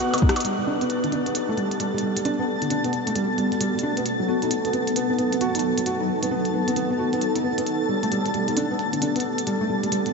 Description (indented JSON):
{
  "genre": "IDM",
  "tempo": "133 BPM",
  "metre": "4/4",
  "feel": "swing 62% on 16ths",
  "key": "G major",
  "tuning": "A4 = 442 Hz",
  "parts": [
    { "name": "granular cloud pad", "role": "sustained chords", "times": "0.0-10.1 s", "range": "F#3 to B4", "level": "-25 LUFS", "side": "left 1 dB", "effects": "built-in reverb, wide subtle chorus" },
    { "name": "felt-muted upright piano", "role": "arpeggios", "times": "0.0-10.1 s", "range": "D3 to F#4", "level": "-26 LUFS", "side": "right 2 dB", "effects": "low-pass filter, tape echo" },
    { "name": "glitchy drum kit", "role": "drums", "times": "0.0-10.1 s", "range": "hi-hat, percussion blips, rim click", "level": "-30 LUFS", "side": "right 1 dB", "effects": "none" },
    { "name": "twinkling granular texture", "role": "texture", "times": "0.0-10.1 s", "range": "A5 to F#6", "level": "-31 LUFS", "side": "left 2 dB", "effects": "built-in reverb, wide subtle chorus" }
  ],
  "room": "wet huge ambient reverb, RT60 8.3 s",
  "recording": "dreamy mix soaked in reverb, nothing above 7.9 kHz",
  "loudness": "-21 LUFS",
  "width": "side -4 dB against mid",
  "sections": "0.4-10.1 A section",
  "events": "drum fill 0.2; filter sweep on ambient pad 0.4-10.1",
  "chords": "0.4 Gadd9; 4.1 B7/F#; 7.7 Gadd9"
}